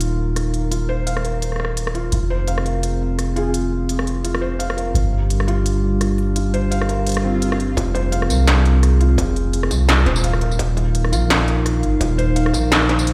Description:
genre	half-time drum and bass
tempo	170 BPM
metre	4/4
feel	swing 55% on 16ths, half-time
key	F dorian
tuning	A4 = 437 Hz
part	dark analog pad	sustained chords	0.0-13.1 s	G3 to F5	-27 LUFS	equal	lush chorus, sidechain pumping
part	felt-muted upright piano	arpeggios	0.0-13.1 s	C4 to F5	-29 LUFS	equal	low-pass filter, dub echo
part	long sustained 808-style bass	bass	0.0-13.1 s	Eb1 to C2	-21 LUFS	equal	none
part	industrial drum kit	drums	0.0-13.1 s	hi-hat, rim click, snare drum, tambourine	-25 LUFS	equal	none
part	breathy flute-like synth lead	melody	3.4-3.5 s	Ab4	-33 LUFS	equal	ensemble chorus, cassette tape, dub echo
part	swell	sound effects	7.2-7.8 s	none	-32 LUFS	equal	none
part	electronic kick drum	drums	7.8-12.6 s	none	-31 LUFS	equal	distortion, high-pass filter on kick, high-pass filter on room
room	light reverb, digital ambience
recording	played on a big sound system in a bare room, large studio reverb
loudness	-19 LUFS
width	mono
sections	0.0-7.8 A section; 7.8-13.1 B section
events	filter sweep on analog synth pad 0.0-7.8; swell 7.2-7.8; build-up 7.8-13.1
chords	0.0 Eb5; 2.1 Fm; 4.9 Gm; 7.8 Fm; 10.6 Eb5

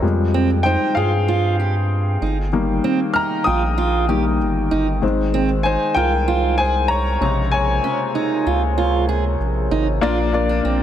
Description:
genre	piano-driven pop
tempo	96 BPM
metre	4/4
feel	straight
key	Ab major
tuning	A4 = 441 Hz
part	clear upright piano	accompaniment	0.0-10.8 s	Bb2 to F6	-20 LUFS	left 4 dB	none
part	glass harmonica	sustained chords	0.0-10.8 s	Ab3 to G5	-30 LUFS	right 1 dB	none
part	round analog bass	bass	0.0-10.8 s	G1 to G2	-20 LUFS	equal	none
part	fingerpicked steel-string acoustic guitar	riff	0.3-10.8 s	C4 to Ab4	-23 LUFS	right 8 dB	none
room	light reverb, studio reverb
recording	none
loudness	-16 LUFS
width	side -10 dB against mid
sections	0.0-10.0 A section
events	upright piano solo 0.0-10.0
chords	0.0 Fmadd9; 2.2 Eb/G; 5.0 Ab; 10.0 Bb

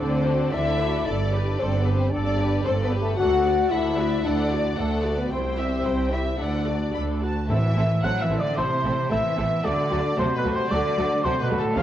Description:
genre	cinematic, heroic adventure film score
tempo	112 BPM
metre	4/4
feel	straight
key	D mixolydian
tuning	A4 = 440 Hz
part	warm symphonic violin section	melody	0.0-11.8 s	A4 to B5	-32 LUFS	left 3 dB	none
part	warm symphonic violin section	second line	0.0-11.8 s	E4 to F#5	-32 LUFS	left 3 dB	none
part	warm symphonic viola section	accompaniment	0.0-11.8 s	F#3 to E5	-32 LUFS	right 1 dB	none
part	mellow French horn section	sustained chords	0.0-11.8 s	A3 to G#4	-27 LUFS	left 3 dB	none
part	rich studio double bass section	bass	0.0-11.8 s	G1 to D2	-29 LUFS	right 2 dB	none
part	rich symphonic cello section	bass	0.0-11.8 s	C2 to F#3	-28 LUFS	right 2 dB	none
part	dark cor anglais	second line	7.5-11.8 s	A4 to F#5	-26 LUFS	right 1 dB	none
part	timpani	percussion	7.5-8.3 s	A2	-26 LUFS	equal	none
room	moderate scoring stage reverb, RT60 1.7 s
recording	worn, warbling old tape, cassette tape, warbly pitch drift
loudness	-21 LUFS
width	side -11 dB against mid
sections	0.0-7.5 A section; 7.5-11.8 A section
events	none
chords	0.0 D; 1.1 Gadd9; 3.2 D; 5.3 C; 6.4 D; 7.5 Am; 9.6 D

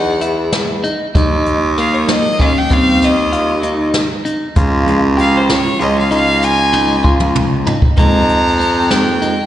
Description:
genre	progressive instrumental, band music in an uneven meter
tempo	194 BPM (eighths)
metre	11/8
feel	straight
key	unclear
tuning	A4 = 436 Hz
part	bright violin	melody	0.0-9.5 s	C5 to Bb5	-17 LUFS	equal	slapback echo, digital delay
part	clean electric guitar	arpeggios	0.0-9.4 s	Bb3 to G4	-19 LUFS	left 1 dB	phaser, slapback echo, digital delay
part	clear baritone saxophone	bass	0.0-9.4 s	Db2 to F2	-16 LUFS	right 1 dB	none
part	jazz brush drum kit	drums	0.2-9.4 s	hi-hat, kick drum, snare drum, toms	-16 LUFS	equal	none
part	vintage hollow-body jazz guitar	accompaniment	1.1-9.3 s	F3 to G4	-20 LUFS	right 1 dB	double-tracked left and right, slapback echo
room	light reverb, small room ambience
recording	live gig heard through the venue's PA, recital hall reverb, nothing above 10.6 kHz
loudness	-11 LUFS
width	side -12 dB against mid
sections	0.0-8.0 A section; 8.0-9.5 B section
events	violin solo 0.0-8.0; drum fill 6.7-8.0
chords	0.0 Emaj7(no3); 1.2 Ebadd9; 4.6 Db; 8.0 Fm11

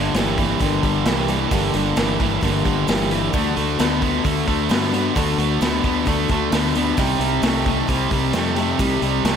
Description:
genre	classic rock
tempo	132 BPM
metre	4/4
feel	straight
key	unclear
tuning	A4 = 443 Hz
part	picked steel-string acoustic guitar	accompaniment	0.0-9.4 s	G2 to A4	-26 LUFS	right 3 dB	slapback echo
part	distorted electric guitar	riff	0.0-9.4 s	G2 to B3	-23 LUFS	right 10 dB	overdrive
part	overdriven semi-hollow guitar	riff	0.0-9.4 s	G2 to B3	-22 LUFS	left 9 dB	none
part	fuzz fingered electric bass	bass	0.0-9.4 s	G1 to G2	-25 LUFS	equal	overdrive
part	vintage drum kit	drums	0.1-9.4 s	hi-hat, kick drum, snare drum	-24 LUFS	equal	none
room	moderate concert hall reverb, RT60 2.1 s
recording	big arena sound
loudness	-17 LUFS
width	side -7 dB against mid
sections	0.0-9.4 A section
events	none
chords	0.0 Gmadd9; 3.3 D; 7.0 Cm

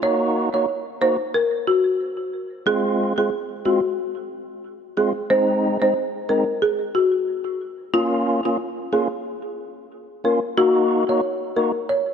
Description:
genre	dancehall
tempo	91 BPM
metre	4/4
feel	swing 56% on 16ths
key	unclear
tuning	A4 = 440 Hz
part	folk marimba with medium mallets	melody	0.0-12.0 s	F4 to Db5	-21 LUFS	left 1 dB	tape echo
part	tonewheel organ	accompaniment	0.0-11.7 s	Ab3 to Gb4	-24 LUFS	equal	overdrive, fast rotary speaker
room	moderate lush hall reverb, RT60 2.7 s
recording	dark, warm production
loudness	-19 LUFS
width	side -7 dB against mid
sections	0.0-10.6 A section; 10.6-12.1 B section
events	none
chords	0.0 Gb6; 2.7 Fm; 5.3 Ab; 7.9 Bbm; 10.6 Gb6

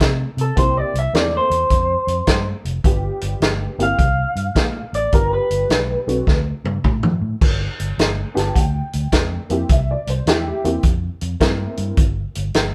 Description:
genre	electric blues shuffle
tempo	105 BPM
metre	4/4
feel	swing 66% on 8ths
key	G mixolydian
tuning	A4 = 440 Hz
part	vintage muted fingered electric bass	bass	0.0-12.7 s	F1 to C3	-25 LUFS	equal	none
part	vintage drum kit	drums	0.0-12.7 s	crash cymbal, hi-hat, kick drum, snare drum, toms	-20 LUFS	equal	none
part	electric guitar through a small old amp	melody	0.4-6.4 s	A4 to F5	-22 LUFS	equal	none
part	honky-tonk upright piano	accompaniment	0.6-12.0 s	Bb3 to A5	-27 LUFS	equal	none
room	light reverb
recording	band playing live in one room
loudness	-19 LUFS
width	mono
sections	0.0-7.4 A section; 7.4-12.7 B section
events	drum fill 6.3-7.4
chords	0.0 D7(no3) (rootless); 0.6 C7; 2.8 G7; 4.0 C5; 5.1 G7; 6.3 D5; 7.4 G7(no3); 9.7 C7; 12.0 N.C.

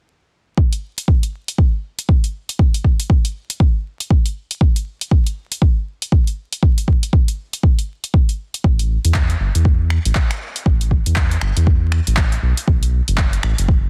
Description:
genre	deep house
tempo	119 BPM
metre	4/4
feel	swing 60% on 16ths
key	unclear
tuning	A4 = 440 Hz
part	electronic kick drum	drums	0.6-13.8 s	none	-17 LUFS	equal	none
part	punchy analog drum machine	drums	0.7-13.7 s	finger snaps, handclaps, hi-hat	-26 LUFS	equal	overdrive
part	round analog bass	bass	8.6-13.9 s	F#1 to E2	-19 LUFS	equal	sidechain pumping
room	digital ambience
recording	dense, heavily limited modern master, vinyl crackle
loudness	-18 LUFS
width	mono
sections	0.6-13.9 A section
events	none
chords	none

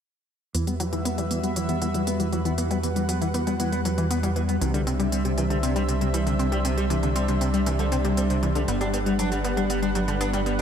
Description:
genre	synthwave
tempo	118 BPM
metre	4/4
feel	straight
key	E minor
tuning	A4 = 442 Hz
part	lush unison pad	sustained chords	0.5-10.6 s	G3 to F#5	-28 LUFS	equal	chorus
part	analog pluck	arpeggios	0.5-10.6 s	D3 to C4	-28 LUFS	left 4 dB	chorus, ping-pong delay
part	electric guitar at the edge of break-up	riff	0.5-10.6 s	C3 to D4	-30 LUFS	right 3 dB	wide subtle chorus, low-pass filter, ping-pong delay
part	chorused synth bass	bass	0.5-10.6 s	G1 to E2	-27 LUFS	right 1 dB	none
part	electronic hi-hat	drums	0.5-10.6 s	none	-36 LUFS	equal	studio reverb
room	moderate lush hall reverb, RT60 2.7 s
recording	bright 1980s-style digital production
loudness	-22 LUFS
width	side -8 dB against mid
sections	0.5-10.6 A section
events	filter sweep on analog synth bass 0.5-10.6; filter sweep on synth arpeggio sound 0.5-10.6; filter sweep on clean electric guitar 0.5-10.6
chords	0.5 Emadd9; 4.6 Cadd9; 8.7 Gmaj7

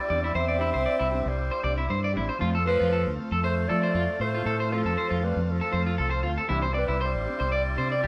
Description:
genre	highlife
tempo	117 BPM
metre	4/4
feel	straight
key	C major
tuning	A4 = 439 Hz
part	growling clarinet	melody	0.0-8.1 s	A4 to E5	-32 LUFS	equal	none
part	bright tenor saxophone	second line	0.0-8.1 s	F3 to C4	-36 LUFS	equal	none
part	combo organ	sustained chords	0.0-8.1 s	A3 to F4	-42 LUFS	equal	none
part	mellow electric guitar	accompaniment	0.1-7.9 s	E3 to G4	-39 LUFS	equal	spring reverb
part	electric guitar at the edge of break-up	arpeggios	0.1-8.1 s	E4 to D5	-32 LUFS	equal	spring reverb
part	fingered electric bass	bass	0.1-8.1 s	A1 to F3	-31 LUFS	equal	none
room	moderate studio ambience, RT60 0.5 s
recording	band playing live in one room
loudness	-26 LUFS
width	mono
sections	0.0-8.1 A section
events	none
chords	0.0 Cadd9; 2.4 F; 6.5 Cadd9

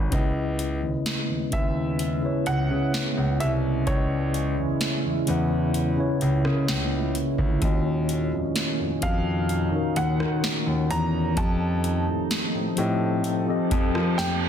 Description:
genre	contemporary R&B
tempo	64 BPM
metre	4/4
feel	straight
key	unclear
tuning	A4 = 440 Hz
part	mellow tine electric piano	accompaniment	0.0-14.5 s	Db3 to Cb6	-27 LUFS	left 3 dB	fast stereo tremolo
part	warm grand piano	bass	0.0-14.5 s	Ab1 to F3	-26 LUFS	equal	none
part	deep dark ambient pad	sustained chords	0.9-14.5 s	Bb2 to A4	-31 LUFS	right 3 dB	chorus, built-in reverb, sidechain pumping
part	booming analog drum machine	drums	0.1-14.4 s	hi-hat, kick drum, rim click, snare drum	-28 LUFS	right 1 dB	none
part	dark baby grand piano	melody	1.5-14.5 s	Db5 to Bb5	-32 LUFS	right 2 dB	tape echo
part	reverse cymbal	sound effects	13.6-14.5 s	none	-32 LUFS	right 8 dB	none
room	light reverb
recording	dense, heavily limited modern master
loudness	-22 LUFS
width	side -8 dB against mid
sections	0.1-14.5 A section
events	reverse cymbal 13.6-14.5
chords	0.1 Dbm7; 7.6 Ebm7; 11.4 F7

